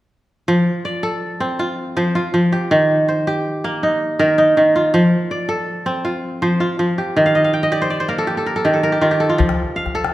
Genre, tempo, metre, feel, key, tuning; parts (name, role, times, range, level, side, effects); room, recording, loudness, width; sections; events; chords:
west african traditional, West African string and xylophone music; 108 BPM (dotted quarters); 12/8; straight; F mixolydian; A4 = 440 Hz
kora; arpeggios; 0.5-10.1 s; Eb3 to G5; -15 LUFS; equal
calabash; percussion; 9.4-10.1 s; -20 LUFS; left 4 dB
wet recital hall reverb, RT60 1.7 s; -15 LUFS; side -16 dB against mid
0.5-9.4 A section
kora fill 7.3-9.4
0.5 F; 2.7 Eb; 4.9 F; 7.2 Eb; 9.4 F